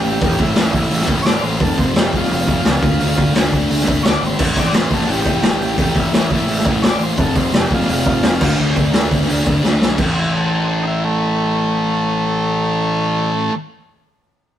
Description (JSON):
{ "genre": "garage rock duo or trio", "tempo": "172 BPM", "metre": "4/4", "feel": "straight", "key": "A minor", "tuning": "A4 = 440 Hz", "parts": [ { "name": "overdriven combo organ", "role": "melody", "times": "0.0-13.6 s", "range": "A3 to D5", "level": "-22 LUFS", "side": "right 1 dB", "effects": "none" }, { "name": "thick fuzz guitar", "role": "riff", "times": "0.0-13.5 s", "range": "F2 to D4", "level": "-20 LUFS", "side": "left 1 dB", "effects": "distortion" }, { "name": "fuzz picked electric bass", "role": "bass", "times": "0.0-13.3 s", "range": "F1 to D2", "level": "-20 LUFS", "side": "equal", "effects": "overdrive, tube saturation" }, { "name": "raw garage drum kit", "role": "drums", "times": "0.0-10.1 s", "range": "crash cymbal, hi-hat, kick drum, snare drum", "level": "-17 LUFS", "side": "equal", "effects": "none" } ], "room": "little or no reverb", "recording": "rough rehearsal-room recording, warm saturation", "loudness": "-14 LUFS", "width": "side -10 dB against mid", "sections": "0.0-10.0 A section; 10.0-12.8 B section", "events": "drum fill 9.6-10.0", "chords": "0.0 A5; 1.6 F5; 2.8 Dm; 4.4 A5; 7.2 F5; 8.4 D5; 10.0 A5" }